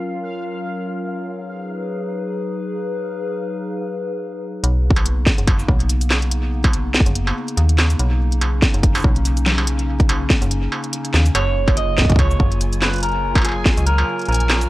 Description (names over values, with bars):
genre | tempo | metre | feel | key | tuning
IDM | 143 BPM | 4/4 | swing 56% on 16ths | B lydian | A4 = 440 Hz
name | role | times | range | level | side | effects
warbly tape-like pad | sustained chords | 0.0-14.7 s | C#3 to B4 | -26 LUFS | left 1 dB | chorus, built-in reverb
bubbling stepped-filter texture | texture | 0.0-4.6, 12.2-14.7 s | E#5 to G#5 | -34 LUFS | left 1 dB | chorus, built-in reverb, sidechain pumping
metallic FM bass | bass | 4.6-14.7 s | F#1 to D#2 | -19 LUFS | equal | none
industrial drum kit | drums | 4.6-14.7 s | cabasa, hi-hat, snare drum, struck metal | -21 LUFS | equal | none
electronic kick drum | drums | 4.9-13.8 s | none | -16 LUFS | equal | none
electric guitar through a small old amp | melody | 11.3-14.7 s | G#4 to D#5 | -22 LUFS | right 2 dB | phaser, tape echo
room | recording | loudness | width
digital ambience | dry, gritty hardware recording, transformer saturation, cassette tape | -16 LUFS | side -17 dB against mid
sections
0.0-4.6 A section; 4.6-14.7 B section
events
none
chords
0.0 F#maj7; 1.3 G#m7; 4.6 Bmaj9; 11.3 F#maj7